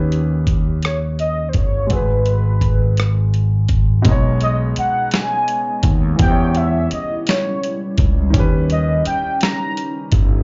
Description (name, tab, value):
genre	slow six-eight R&B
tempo	56 BPM (dotted quarters)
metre	6/8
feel	straight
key	B major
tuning	A4 = 441 Hz
part	warm baby grand piano	accompaniment	0.0-10.4 s	B2 to C#5	-28 LUFS	equal	none
part	fretless electric bass	bass	0.0-10.4 s	G1 to E2	-19 LUFS	equal	none
part	dusty soul sampler-style drum kit	drums	0.1-10.3 s	hi-hat, kick drum, rim click, snare drum	-20 LUFS	equal	none
part	warm velvety synth lead	melody	0.8-10.1 s	B4 to A#5	-24 LUFS	equal	chorus, slapback echo
part	glassy FM pad	sustained chords	4.9-10.4 s	C#3 to E4	-30 LUFS	equal	ensemble chorus, built-in reverb, phaser
room	light reverb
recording	live gig heard through the venue's PA, club reverb, nothing above 7.5 kHz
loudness	-17 LUFS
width	mono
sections	0.0-4.1 A section; 4.1-10.4 B section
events	none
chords	0.0 D#7b13; 1.9 G#m7; 4.1 B69; 6.2 Em6; 8.3 D#7b13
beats	0.84 | 1.91 2.98 | 4.05 5.12 | 6.19 7.26 | 8.34 9.41